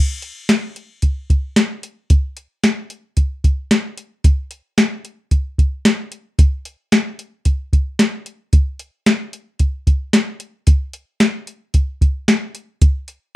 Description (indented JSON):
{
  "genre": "dream pop",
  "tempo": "112 BPM",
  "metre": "4/4",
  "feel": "straight",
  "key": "none",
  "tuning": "none",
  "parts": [
    { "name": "soft vintage rhythm box", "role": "drums", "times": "0.2-13.2 s", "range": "hi-hat, kick drum, snare drum", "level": "-14 LUFS", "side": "equal", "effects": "none" }
  ],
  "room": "light reverb",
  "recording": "rough home demo mix",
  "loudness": "-16 LUFS",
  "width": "side -16 dB against mid",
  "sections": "0.0-13.4 A section",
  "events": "none",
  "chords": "none",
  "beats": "0.49 1.03 1.57 | 2.10 2.64 3.17 3.71 | 4.25 4.78 5.32 5.85 | 6.39 6.92 7.46 8.00 | 8.53 9.07 9.60 10.14 | 10.67 11.21 11.74 12.28 | 12.82"
}